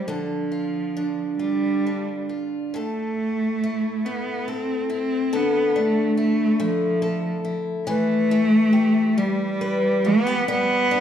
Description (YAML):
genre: celtic folk, Celtic slow air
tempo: 44-48 BPM (dotted quarters)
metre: 6/8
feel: rubato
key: D dorian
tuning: A4 = 440 Hz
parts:
  - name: rich cello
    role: melody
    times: 0.0-11.0 s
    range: F3 to C4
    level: -22 LUFS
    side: equal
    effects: none
  - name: picked old ladder-braced acoustic guitar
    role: accompaniment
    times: 0.0-11.0 s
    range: A2 to B4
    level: -25 LUFS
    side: equal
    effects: none
room: moderate recital hall reverb, RT60 1.6 s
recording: recorded in a church or concert hall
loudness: -20 LUFS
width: side -9 dB against mid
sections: 0.0-2.7 A section; 2.7-11.0 B section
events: none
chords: 0.1 Dm; 2.7 A5; 5.3 Dmadd9; 7.8 Em; 10.5 G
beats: | 0.07 1.40 | 2.75 4.06 | 5.33 6.58 | 7.85 9.15 | 10.47